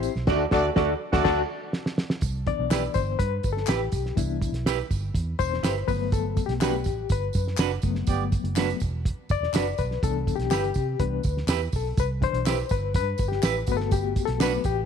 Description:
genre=uptempo 1960s-style soul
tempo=123 BPM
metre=4/4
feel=straight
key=unclear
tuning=A4 = 440 Hz
part: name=barky reed electric piano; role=accompaniment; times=0.0-14.9 s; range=B2 to D5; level=-28 LUFS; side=left 14 dB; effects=overdrive, fast tremolo
part: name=vintage muted fingered electric bass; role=bass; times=0.0-14.8 s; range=E1 to C3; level=-29 LUFS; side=right 1 dB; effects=none
part: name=cloth-damped thuddy drum kit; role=drums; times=0.0-14.8 s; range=crash cymbal, hi-hat, kick drum, snare drum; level=-27 LUFS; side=right 1 dB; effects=none
part: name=tambourine and handclaps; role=percussion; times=0.0-14.8 s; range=none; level=-38 LUFS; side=equal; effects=none
part: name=warm horn section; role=second line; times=0.3-1.4, 8.1-8.2 s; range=A3 to D5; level=-31 LUFS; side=right 12 dB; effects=none
part: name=semi-hollow electric guitar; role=stabs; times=0.3-14.5 s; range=D4 to D5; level=-30 LUFS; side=right 15 dB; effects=warbly pitch drift, slapback echo
room=studio reverb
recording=1960s-style stereo with parts hard left and right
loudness=-23 LUFS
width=side -7 dB against mid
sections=0.0-2.2 A section; 2.2-14.9 B section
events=band accent 0.3-2.2, 8.1-10.0; reed electric piano fill 1.5-2.2; drum fill 1.7-2.2; reed electric piano solo 2.2-14.9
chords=0.3 D; 2.2 Cmaj7; 5.9 Gmaj7; 10.0 Cmaj7; 13.7 Gmaj7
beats=| 0.28 0.77 1.25 1.74 | 2.23 2.71 3.20 3.69 | 4.17 4.66 5.15 5.63 | 6.12 6.61 7.10 7.58 | 8.07 8.56 9.05 9.54 | 10.02 10.51 11.00 11.48 | 11.97 12.46 12.94 13.43 | 13.92 14.40

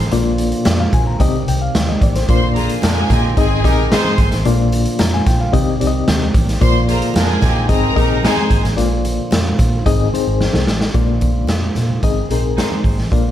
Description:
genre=uptempo 1960s-style soul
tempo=111 BPM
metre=4/4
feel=straight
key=Bb mixolydian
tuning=A4 = 440 Hz
part: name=percussive tonewheel organ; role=sustained chords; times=0.0-13.3 s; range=D3 to Ab4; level=-26 LUFS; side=right 3 dB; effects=overdrive, stopped rotary speaker
part: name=vintage muted fingered electric bass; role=bass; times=0.0-13.3 s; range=Ab1 to Bb2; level=-19 LUFS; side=equal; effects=none
part: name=reed electric piano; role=accompaniment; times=0.1-13.3 s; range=Ab2 to Bb5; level=-20 LUFS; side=left 5 dB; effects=fast tremolo
part: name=raw garage drum kit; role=drums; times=0.1-13.2 s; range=hi-hat, kick drum, snare drum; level=-17 LUFS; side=equal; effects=none
part: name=congas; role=percussion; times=0.1-12.8 s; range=none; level=-29 LUFS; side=right 3 dB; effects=none
part: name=warm studio violin section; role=second line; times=2.3-8.6 s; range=Ab4 to C6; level=-22 LUFS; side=equal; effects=none
part: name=warm horn section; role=second line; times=2.6-8.6, 12.3-13.0 s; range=C4 to C5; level=-23 LUFS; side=right 2 dB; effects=slapback echo
room=light reverb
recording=none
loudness=-13 LUFS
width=side -11 dB against mid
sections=0.0-10.9 A section; 10.9-13.3 B section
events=drum fill 10.4-10.9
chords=0.1 Bb; 1.2 Cm; 2.3 Bb; 3.4 Ab; 4.5 Bb; 5.5 Cm; 6.6 Bb; 7.7 Ab; 8.8 Bb; 9.9 Ab; 10.9 Bb; 12.0 Ab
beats=| 0.12 0.66 1.20 1.74 | 2.29 2.83 3.37 3.91 | 4.45 4.99 5.53 6.08 | 6.62 7.16 7.70 8.24 | 8.78 9.32 9.86 10.40 | 10.94 11.48 12.03 12.57 | 13.11

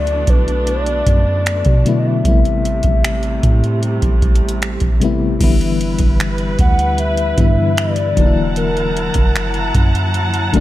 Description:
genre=contemporary R&B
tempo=76 BPM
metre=4/4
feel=straight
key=unclear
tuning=A4 = 440 Hz
part: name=hollow clarinet-like synth lead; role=melody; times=0.0-10.1 s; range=A#4 to F#5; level=-21 LUFS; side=left 1 dB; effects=chorus
part: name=FM electric piano with tremolo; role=accompaniment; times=0.0-10.6 s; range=B2 to A4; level=-21 LUFS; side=left 5 dB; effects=none
part: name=rich studio string section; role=sustained chords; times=0.0-10.6 s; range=C3 to A#5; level=-23 LUFS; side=right 1 dB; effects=none
part: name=soft 808-style bass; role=bass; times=0.0-10.6 s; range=E1 to B2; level=-19 LUFS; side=equal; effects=none
part: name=booming analog drum machine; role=drums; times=0.1-10.6 s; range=crash cymbal, finger snaps, hi-hat, kick drum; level=-15 LUFS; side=equal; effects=none
room=little or no reverb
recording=none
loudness=-13 LUFS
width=side -15 dB against mid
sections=0.0-5.4 A section; 5.4-10.6 B section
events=none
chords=0.0 Bm7; 2.2 Am9; 5.4 G6; 8.2 F#7alt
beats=0.67 1.46 | 2.25 3.04 3.83 4.62 | 5.41 6.20 6.99 7.77 | 8.56 9.35 10.14

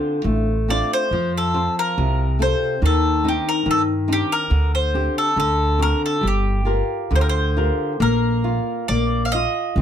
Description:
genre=fado-style ballad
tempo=70 BPM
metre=2/4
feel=rubato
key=G minor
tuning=A4 = 440 Hz
part: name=bowl-back mandolin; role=melody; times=0.0-9.8 s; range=G4 to F5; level=-22 LUFS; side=left 1 dB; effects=none
part: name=flamenco guitar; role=accompaniment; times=0.0-9.8 s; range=C3 to C5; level=-22 LUFS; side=left 2 dB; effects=none
part: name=upright bass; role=bass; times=0.2-9.8 s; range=G1 to G2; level=-21 LUFS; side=right 1 dB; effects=none
room=light reverb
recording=close, detailed microphones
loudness=-17 LUFS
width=side -9 dB against mid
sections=0.0-8.0 A section; 8.0-9.8 B section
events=none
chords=0.0 Dm7; 1.1 F; 2.8 Cmadd9/Eb; 4.5 D7sus4; 5.4 D7; 6.2 Gm7; 8.0 Bb5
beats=0.24 | 1.10 1.96 | 2.81 3.66 | 4.50 5.37 | 6.23 7.11 | 8.00 8.88 | 9.75

